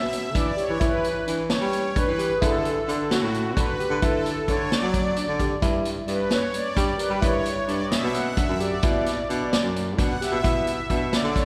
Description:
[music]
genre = progressive instrumental, band music in an uneven meter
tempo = 262 BPM (eighths)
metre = 7/8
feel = straight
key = G lydian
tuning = A4 = 442 Hz
[part]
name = brassy analog pad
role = accompaniment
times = 0.0-11.4 s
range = F#4 to F#5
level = -29 LUFS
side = equal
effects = chorus
[part]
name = tine electric piano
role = arpeggios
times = 0.0-11.4 s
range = C#4 to G4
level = -32 LUFS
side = equal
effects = none
[part]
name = mellow baritone saxophone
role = bass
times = 0.0-11.4 s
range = F#2 to G3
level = -30 LUFS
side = equal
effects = none
[part]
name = vintage drum kit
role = drums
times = 0.1-11.4 s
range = hi-hat, kick drum, snare drum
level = -28 LUFS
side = equal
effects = none
[sound]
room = wet church reverb, RT60 2.5 s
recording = recorded in a church or concert hall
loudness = -24 LUFS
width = mono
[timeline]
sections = 0.0-11.4 A section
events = analog synth pad solo 0.0-11.4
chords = 0.0 Em7; 2.4 D; 5.6 G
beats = 0.12 0.35 0.58 | 0.81 1.04 1.27 1.50 1.73 1.96 2.19 | 2.42 2.65 2.88 3.11 3.34 3.56 3.79 | 4.02 4.25 4.48 4.71 4.94 5.17 5.40 | 5.63 5.86 6.09 6.32 6.55 6.78 7.00 | 7.23 7.46 7.69 7.92 8.15 8.38 8.61 | 8.84 9.07 9.30 9.53 9.76 9.98 10.21 | 10.44 10.67 10.90 11.13 11.36

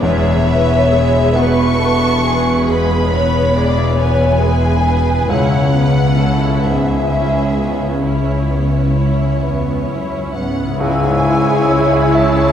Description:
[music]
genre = cinematic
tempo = 45 BPM (dotted quarters)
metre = 6/8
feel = rubato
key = unclear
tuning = A4 = 440 Hz
[part]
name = clear symphonic violin section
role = melody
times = 0.0-12.5 s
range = C#5 to C#6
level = -22 LUFS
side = left 2 dB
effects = none
[part]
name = rich studio violin section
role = second line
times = 0.0-12.5 s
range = E4 to D5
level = -22 LUFS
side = equal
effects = none
[part]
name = bright concert grand piano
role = accompaniment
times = 0.0-12.5 s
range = C#2 to E5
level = -21 LUFS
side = equal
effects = none
[part]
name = rich symphonic viola section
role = accompaniment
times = 0.0-12.5 s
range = G#3 to B4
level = -21 LUFS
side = right 1 dB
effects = none
[part]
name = concert harp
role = arpeggios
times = 0.0-12.5 s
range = E2 to G#5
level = -19 LUFS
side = left 3 dB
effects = none
[part]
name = rich symphonic cello section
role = bass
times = 0.0-12.5 s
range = C#2 to C#3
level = -21 LUFS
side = right 1 dB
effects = none
[part]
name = warm studio double bass section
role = bass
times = 0.0-12.5 s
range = E1 to C#2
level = -20 LUFS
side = right 2 dB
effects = none
[part]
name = mellow hollow flute section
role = second line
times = 10.8-12.5 s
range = E6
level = -22 LUFS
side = equal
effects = none
[part]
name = warm clarinet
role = second line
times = 10.8-12.5 s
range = G#4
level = -25 LUFS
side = left 5 dB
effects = none
[part]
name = warm oboe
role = second line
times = 10.8-12.5 s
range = C#5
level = -26 LUFS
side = right 5 dB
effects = none
[part]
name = mellow French horn section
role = sustained chords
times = 10.8-12.5 s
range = C#3 to E4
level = -20 LUFS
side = left 2 dB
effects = none
[sound]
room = wet scoring stage reverb, RT60 2.1 s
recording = heard from further back in the room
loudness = -12 LUFS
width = side -9 dB against mid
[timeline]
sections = 0.0-10.8 A section; 10.8-12.5 B section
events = none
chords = 0.0 E; 5.3 C#m7; 10.8 C#m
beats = | 0.01 1.36 | 2.67 3.98 | 5.30 6.64 | 8.03 9.42 | 10.80 12.14

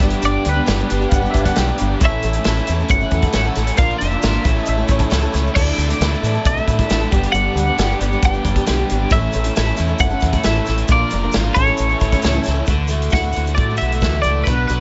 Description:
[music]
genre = folk rock and heartland rock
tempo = 135 BPM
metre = 4/4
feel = straight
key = D major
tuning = A4 = 438 Hz
[part]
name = twelve-string electric guitar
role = melody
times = 0.0-14.8 s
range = B4 to G5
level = -24 LUFS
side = equal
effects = analog chorus
[part]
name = picked twelve-string acoustic guitar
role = accompaniment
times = 0.0-14.8 s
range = G2 to B4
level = -27 LUFS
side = equal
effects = none
[part]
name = tonewheel organ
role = sustained chords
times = 0.0-12.7 s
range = C#4 to D5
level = -34 LUFS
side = equal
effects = none
[part]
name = biting overdriven guitar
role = riff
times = 0.0-14.8 s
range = G2 to G4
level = -26 LUFS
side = equal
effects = none
[part]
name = deep dub fingered electric bass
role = bass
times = 0.0-14.8 s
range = F1 to A2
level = -22 LUFS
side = equal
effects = none
[part]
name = natural country drum kit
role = drums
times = 0.0-14.8 s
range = crash cymbal, hi-hat, kick drum, snare drum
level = -22 LUFS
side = equal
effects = none
[part]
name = tube shaker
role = percussion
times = 0.2-14.8 s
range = none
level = -40 LUFS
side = equal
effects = none
[part]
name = bright upright piano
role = second line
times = 1.1-1.9, 4.6-5.4 s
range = C#5 to G5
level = -28 LUFS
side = equal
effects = none
[sound]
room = small room ambience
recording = nothing above 7.8 kHz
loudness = -17 LUFS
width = mono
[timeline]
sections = 0.0-12.7 A section; 12.7-14.8 B section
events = none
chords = 0.0 G; 2.0 A; 3.8 Bb; 4.5 A; 5.6 Dsus2; 7.1 G; 9.1 A; 10.9 Bb; 11.6 A; 12.7 Dadd9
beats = | 0.22 0.67 1.12 1.56 | 2.01 2.45 2.90 3.35 | 3.79 4.24 4.68 5.12 | 5.57 6.01 6.46 6.90 | 7.35 7.79 8.23 8.68 | 9.12 9.57 10.01 10.46 | 10.90 11.35 11.79 12.24 | 12.68 13.13 13.58 14.02 | 14.47

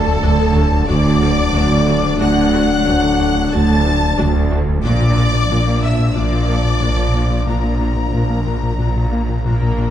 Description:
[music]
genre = cinematic, hybrid orchestral and electronic film score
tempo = 91 BPM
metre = 4/4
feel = straight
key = unclear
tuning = A4 = 440 Hz
[part]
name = warm symphonic violin section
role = melody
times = 0.0-9.9 s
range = A5 to A6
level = -25 LUFS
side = left 4 dB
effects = none
[part]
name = warm symphonic violin section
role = second line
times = 0.0-9.7 s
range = A4 to A5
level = -23 LUFS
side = left 1 dB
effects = none
[part]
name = mellow French horn section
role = sustained chords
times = 0.0-9.8 s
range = F3 to D4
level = -21 LUFS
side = left 5 dB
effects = none
[part]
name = rich symphonic double bass section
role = bass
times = 0.0-9.9 s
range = Bb1 to D2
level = -20 LUFS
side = right 3 dB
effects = none
[part]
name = snarling distorted saw bass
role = bass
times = 0.0-9.9 s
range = D1 to Bb1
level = -23 LUFS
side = equal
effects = distortion
[part]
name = warm symphonic cello section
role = bass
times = 0.0-9.9 s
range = D2 to Bb3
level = -21 LUFS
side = right 2 dB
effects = none
[part]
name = smooth synth bass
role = riff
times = 0.1-9.9 s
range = D2 to Bb3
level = -21 LUFS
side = left 2 dB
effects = none
[part]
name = warm symphonic viola section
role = accompaniment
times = 0.2-9.9 s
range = D4 to Bb4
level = -32 LUFS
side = equal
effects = none
[sound]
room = moderate scoring stage reverb, RT60 1.9 s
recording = dark, warm production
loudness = -13 LUFS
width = side -10 dB against mid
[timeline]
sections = 0.0-9.9 A section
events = none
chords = 0.0 D; 4.8 Bb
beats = 0.23 0.89 1.54 | 2.20 2.86 3.52 4.18 | 4.84 5.50 6.16 6.82 | 7.48 8.14 8.80 9.46

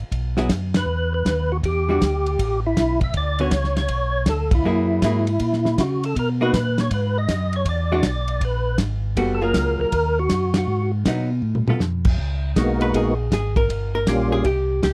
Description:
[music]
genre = soul jazz organ trio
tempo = 159 BPM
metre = 4/4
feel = swing 65% on 8ths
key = F# mixolydian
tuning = A4 = 440 Hz
[part]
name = mellow tonewheel organ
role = bass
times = 0.0-14.9 s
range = F#1 to C#3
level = -25 LUFS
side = equal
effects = slow rotary speaker
[part]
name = warm soul drum kit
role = drums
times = 0.1-14.9 s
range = crash cymbal, hi-hat, kick drum, ride cymbal, snare drum, toms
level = -26 LUFS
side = equal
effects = none
[part]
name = archtop guitar, miked and amplified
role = accompaniment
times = 0.4-14.9 s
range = D3 to Cb5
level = -26 LUFS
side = equal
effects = none
[part]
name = percussive tonewheel organ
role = melody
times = 0.8-14.5 s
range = G3 to E5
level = -25 LUFS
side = equal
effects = slow rotary speaker, overdrive, chorus vibrato
[sound]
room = light reverb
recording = none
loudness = -21 LUFS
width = mono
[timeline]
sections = 0.1-12.2 A section; 12.2-14.9 B section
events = band accent 0.7, 4.5, 10.5; drum fill 11.4-11.8; hollow-body jazz guitar solo 12.2-14.9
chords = 0.1 F#7sus4; 1.6 Em9; 2.4 Asus2; 3.1 D5; 4.6 F#9; 6.2 Bmaj7; 7.7 E7; 9.2 F#maj9; 9.9 D#m; 10.7 G#m7; 11.4 F; 12.2 Db13sus4; 13.7 Gm7b5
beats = | 0.12 0.49 0.87 1.25 | 1.63 2.00 2.38 2.76 | 3.14 3.51 3.89 4.27 | 4.65 5.02 5.40 5.78 | 6.16 6.53 6.91 7.29 | 7.66 8.04 8.42 8.79 | 9.17 9.55 9.93 10.30 | 10.68 11.06 11.43 11.81 | 12.19 12.56 12.94 13.32 | 13.70 14.07 14.45 14.82

